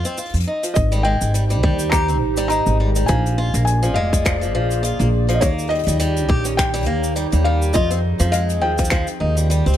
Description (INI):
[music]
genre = folktronica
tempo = 103 BPM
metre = 4/4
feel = swing 56% on 16ths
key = Ab major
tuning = A4 = 439 Hz
[part]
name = picked swing-style acoustic guitar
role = arpeggios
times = 0.0-9.8 s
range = F3 to G4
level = -25 LUFS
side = left 1 dB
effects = ping-pong delay
[part]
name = jazz brush drum kit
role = drums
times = 0.0-9.8 s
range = cabasa, finger snaps, hi-hat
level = -27 LUFS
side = equal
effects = none
[part]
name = upright bass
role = bass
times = 0.3-9.8 s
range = F1 to F2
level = -19 LUFS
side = equal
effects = none
[part]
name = felt-muted upright piano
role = melody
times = 0.7-9.7 s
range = Db5 to Bb5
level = -24 LUFS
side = left 2 dB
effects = vintage 12-bit sampler grit, ping-pong delay
[part]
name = warbly tape-like pad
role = sustained chords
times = 1.2-9.8 s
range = Eb3 to D5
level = -26 LUFS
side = right 2 dB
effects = chorus, built-in reverb, phaser
[part]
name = electronic kick drum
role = drums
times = 0.8-9.0 s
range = none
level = -19 LUFS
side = equal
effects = overdrive
[sound]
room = studio reverb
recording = none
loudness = -16 LUFS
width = side -11 dB against mid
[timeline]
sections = 0.0-9.8 A section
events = none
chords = 0.0 F7(no3); 0.8 Abmaj7; 3.1 Bb7; 5.4 Eb7; 7.8 Fm7; 8.9 Eb69